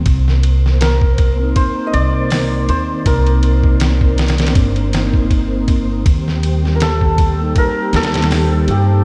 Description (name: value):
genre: trip hop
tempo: 80 BPM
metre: 4/4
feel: swing 55% on 16ths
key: C dorian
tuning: A4 = 440 Hz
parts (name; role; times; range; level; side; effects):
- mellow tonewheel organ; accompaniment; 0.0-9.0 s; G3 to Eb4; -24 LUFS; equal; slow rotary speaker, tremolo, tape echo
- upright bass; bass; 0.0-9.0 s; G1 to G2; -17 LUFS; equal; none
- string machine, cellos; sustained chords; 0.1-9.0 s; G4 to C6; -29 LUFS; equal; ensemble chorus
- trip hop sampler-style drum kit; drums; 0.1-8.9 s; hi-hat, kick drum, ride cymbal, snare drum; -19 LUFS; equal; vintage 12-bit sampler grit, small room reverb
- santur; melody; 0.8-9.0 s; G4 to Eb5; -24 LUFS; equal; tape echo
room: light reverb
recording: none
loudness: -15 LUFS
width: mono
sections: 0.0-9.0 A section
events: none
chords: 0.1 Cm7; 6.1 Eb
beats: | 0.06 0.81 1.56 2.31 | 3.06 3.81 4.56 5.31 | 6.06 6.81 7.56 8.31